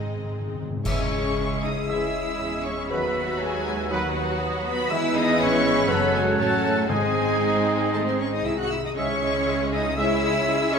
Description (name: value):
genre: classical, dramatic, fast romantic movement for symphony orchestra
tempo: 119 BPM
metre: 4/4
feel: rubato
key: C# minor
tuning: A4 = 440 Hz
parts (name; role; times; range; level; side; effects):
- rich symphonic violin section; melody; 0.0-10.8 s; D#5 to F#6; -31 LUFS; left 3 dB; none
- rich symphonic violin section; second line; 0.0-10.8 s; D#4 to B4; -34 LUFS; left 2 dB; none
- rich symphonic viola section; accompaniment; 0.0-10.8 s; F#3 to F#4; -30 LUFS; right 2 dB; none
- concert harp; arpeggios; 0.0-10.8 s; F#2 to E5; -31 LUFS; left 7 dB; none
- rich studio double bass section; bass; 0.0-10.8 s; F#1 to E2; -33 LUFS; right 3 dB; none
- rich symphonic cello section; bass; 0.0-10.8 s; G#2 to F#4; -31 LUFS; right 3 dB; none
- timpani; percussion; 0.0-1.6, 6.9-7.6 s; G#2 to C#3; -33 LUFS; left 2 dB; none
- mellow bassoon; accompaniment; 0.8-10.8 s; F#3 to G#3; -33 LUFS; equal; none
- bright clarinet; second line; 0.9-10.8 s; G#4 to C#5; -34 LUFS; equal; none
- mellow silver concert flute; second line; 0.9-10.8 s; F#4 to F#5; -30 LUFS; left 1 dB; none
- warm oboe; second line; 0.9-10.8 s; D#5 to F#5; -33 LUFS; right 3 dB; none
- mellow trombone section; sustained chords; 0.9-10.2 s; G#2 to G#3; -34 LUFS; right 7 dB; none
- warm French horn section; sustained chords; 0.9-10.2 s; G#3 to G#4; -33 LUFS; left 4 dB; none
- dark trumpet section; stabs; 0.9-10.2 s; A4 to E5; -32 LUFS; right 1 dB; none
- clash cymbals and concert bass drum; percussion; 0.9-1.8 s; none; -33 LUFS; equal; none
room: moderate scoring stage reverb, RT60 1.4 s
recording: minimal, uncompressed stereo recording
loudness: -21 LUFS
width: side -6 dB against mid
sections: 0.9-10.8 A section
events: timpani fill 0.0-0.9; band accent 0.9-1.4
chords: 0.0 G#; 0.9 C#m; 2.9 B/D#; 4.9 E; 5.9 F#m; 6.9 G#; 9.0 C#m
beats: 0.35 | 0.86 1.37 1.88 2.39 | 2.91 3.41 3.91 4.42 | 4.91 5.40 5.90 6.39 | 6.90 7.42 7.94 8.46 | 8.97 9.48 9.98 10.49